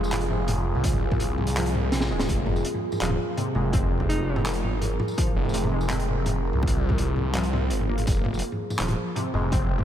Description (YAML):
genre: half-time drum and bass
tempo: 166 BPM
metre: 4/4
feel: half-time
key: F minor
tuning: A4 = 440 Hz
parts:
  - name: deep dark ambient pad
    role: sustained chords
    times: 0.0-9.8 s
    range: F4 to C5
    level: -31 LUFS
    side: equal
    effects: chorus, built-in reverb, sidechain pumping
  - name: warbly dusty pluck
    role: arpeggios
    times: 0.0-9.8 s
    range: C3 to C4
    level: -32 LUFS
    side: left 1 dB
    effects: analog chorus, tape echo
  - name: phased detuned saw bass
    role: bass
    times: 0.0-9.8 s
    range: Eb1 to C2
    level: -26 LUFS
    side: equal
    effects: phaser
  - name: crunchy breakbeat drum kit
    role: drums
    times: 0.0-9.8 s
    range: handclaps, hi-hat, snare drum, tambourine, toms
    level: -29 LUFS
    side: equal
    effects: none
  - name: electronic kick drum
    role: drums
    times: 0.8-9.8 s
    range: none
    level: -26 LUFS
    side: equal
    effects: none
  - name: breathy alto saxophone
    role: melody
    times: 4.1-4.5 s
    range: Eb4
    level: -38 LUFS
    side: equal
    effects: none
room: light reverb, studio reverb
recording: none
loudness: -22 LUFS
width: side -10 dB against mid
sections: 0.0-9.8 A section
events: drum fill 1.9-2.3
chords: 0.0 Fm